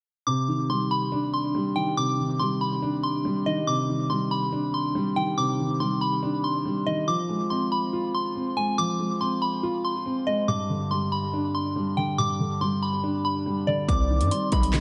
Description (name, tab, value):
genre	hip hop, drill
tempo	141 BPM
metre	4/4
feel	half-time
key	C harmonic minor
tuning	A4 = 440 Hz
part	soft synth bell	melody	0.3-14.8 s	D5 to D6	-30 LUFS	equal	chorus, tape echo
part	dark grand piano	accompaniment	0.3-14.8 s	G2 to F4	-28 LUFS	equal	tape echo
part	warm velvety synth lead	second line	13.9-14.8 s	D5 to Eb5	-36 LUFS	equal	chorus, tape echo
part	dark analog pad	sustained chords	14.3-14.8 s	G3 to C4	-37 LUFS	equal	none
part	hard-hitting 808-style bass	bass	13.9-14.8 s	B1 to G2	-26 LUFS	equal	none
part	drill drum kit	drums	13.9-14.8 s	handclaps, hi-hat, kick drum, snare drum	-28 LUFS	equal	overdrive
room	light reverb, digital ambience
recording	echo-heavy mix, nothing above 11.0 kHz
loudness	-26 LUFS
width	mono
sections	0.3-13.9 A section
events	none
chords	0.3 Cmadd9; 7.1 Fm; 10.5 G; 13.9 Cmadd9